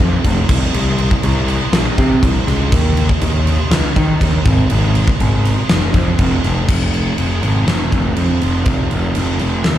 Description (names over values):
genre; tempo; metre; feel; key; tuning
hard rock; 121 BPM; 4/4; straight; F minor; A4 = 440 Hz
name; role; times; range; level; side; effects
fuzz picked electric bass; bass; 0.0-9.8 s; F1 to Eb3; -15 LUFS; equal; overdrive
huge arena drum kit; drums; 0.0-9.8 s; crash cymbal, kick drum, snare drum; -16 LUFS; equal; none
room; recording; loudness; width
little or no reverb; live gig heard through the venue's PA, recital hall reverb; -13 LUFS; side -12 dB against mid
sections
0.0-6.7 A section; 6.7-9.8 B section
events
none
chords
none